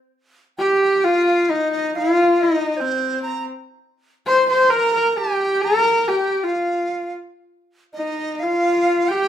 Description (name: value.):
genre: mongolian traditional, Mongolian folk.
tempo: 131 BPM.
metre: 4/4.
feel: straight.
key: unclear.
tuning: A4 = 439 Hz.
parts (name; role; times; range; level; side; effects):
rich horsehead fiddle; melody; 0.6-9.3 s; C4 to C5; -17 LUFS; left 1 dB; none.
hollow dizi; second line; 0.6-9.3 s; C5 to C6; -24 LUFS; right 3 dB; plate reverb.
room: wet studio reverb, RT60 0.6 s.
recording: rough home demo mix.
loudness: -16 LUFS.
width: side -10 dB against mid.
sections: 0.1-9.3 A section.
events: none.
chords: none.